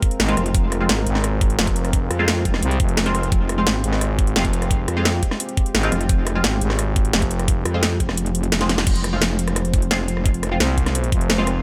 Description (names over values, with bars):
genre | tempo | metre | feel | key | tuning
dark technical drum and bass | 173 BPM | 4/4 | straight | F minor | A4 = 440 Hz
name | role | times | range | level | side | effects
dark analog pad | sustained chords | 0.0-11.6 s | Ab3 to C5 | -32 LUFS | equal | chorus, sidechain pumping
drum and bass drum kit | drums | 0.0-11.5 s | crash cymbal, hi-hat, rim click, snare drum | -25 LUFS | equal | none
electronic kick drum | drums | 0.0-11.2 s | none | -22 LUFS | equal | none
growling FM bass | bass | 0.2-7.6, 10.6-11.6 s | F1 to C2 | -24 LUFS | equal | none
filtered dub chord stab | stabs | 0.3-11.5 s | Ab3 to F4 | -29 LUFS | equal | phaser, ensemble chorus, digital delay
metallic wobble bass | bass | 0.4-10.6 s | F1 to F2 | -24 LUFS | equal | chorus, overdrive, sidechain pumping
room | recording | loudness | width
light reverb, digital ambience | none | -20 LUFS | mono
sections
0.0-8.9 A section; 8.9-11.6 A section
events
drop 0.0-8.9, 8.9-11.6; kick drops out 8.2-8.9; drum fill 8.6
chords
0.0 Fm